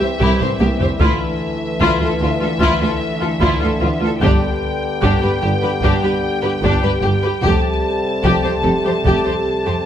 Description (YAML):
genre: cinematic, epic orchestral film score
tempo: 75 BPM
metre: 4/4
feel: straight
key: unclear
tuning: A4 = 440 Hz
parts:
  - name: rich symphonic violin section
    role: melody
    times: 0.0-9.9 s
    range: E5 to A5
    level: -26 LUFS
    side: left 3 dB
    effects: none
  - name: warm symphonic violin section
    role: second line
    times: 0.0-9.7 s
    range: D4 to C5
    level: -24 LUFS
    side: left 3 dB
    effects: none
  - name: warm studio viola section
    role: accompaniment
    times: 0.0-9.7 s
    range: F4 to G4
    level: -22 LUFS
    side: equal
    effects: none
  - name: dark trombone section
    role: sustained chords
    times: 0.0-9.9 s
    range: C3 to G3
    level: -24 LUFS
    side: right 2 dB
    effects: none
  - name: mellow French horn section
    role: sustained chords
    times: 0.0-9.9 s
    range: E3 to A4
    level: -24 LUFS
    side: left 4 dB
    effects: none
  - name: warm symphonic cello section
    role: bass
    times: 0.0-9.7 s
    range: C2 to G2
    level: -23 LUFS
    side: right 2 dB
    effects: none
  - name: clear symphonic double bass section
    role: bass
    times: 0.2-9.1 s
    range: F1 to D2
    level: -21 LUFS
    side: right 2 dB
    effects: none
  - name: taiko ensemble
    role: drums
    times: 0.2-9.8 s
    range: none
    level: -22 LUFS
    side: equal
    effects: none
room: moderate scoring stage reverb, RT60 1.7 s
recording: close, detailed microphones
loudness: -14 LUFS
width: side -10 dB against mid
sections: 0.0-9.9 A section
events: drum fill 0.2-1.0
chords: 0.0 C; 1.0 Dmadd9; 4.2 G; 7.4 Fadd9